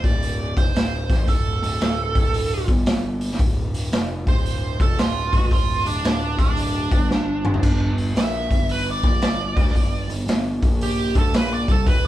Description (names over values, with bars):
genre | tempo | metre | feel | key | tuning
blues rock power trio and southern rock | 113 BPM | 4/4 | swing 65% on 8ths | unclear | A4 = 440 Hz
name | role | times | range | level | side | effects
nasal lead guitar with a parked wah | second line | 0.0-12.1 s | D4 to E5 | -25 LUFS | right 3 dB | overdrive
fuzz picked electric bass | bass | 0.0-12.1 s | D1 to D2 | -26 LUFS | equal | overdrive
raw garage drum kit | drums | 0.0-12.0 s | crash cymbal, hi-hat, kick drum, snare drum, toms | -20 LUFS | equal | none
room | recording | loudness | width
light reverb | band playing live in one room | -18 LUFS | side -14 dB against mid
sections
0.0-12.1 A section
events
lead electric guitar solo 0.0-12.1; drum fill 7.1-7.6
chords
0.0 D5; 7.6 G5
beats
0.22 0.75 | 1.28 1.81 2.34 2.87 | 3.40 3.92 4.46 4.98 | 5.51 6.04 6.57 7.10 | 7.63 8.16 8.69 9.22 | 9.75 10.28 10.81 11.34 | 11.87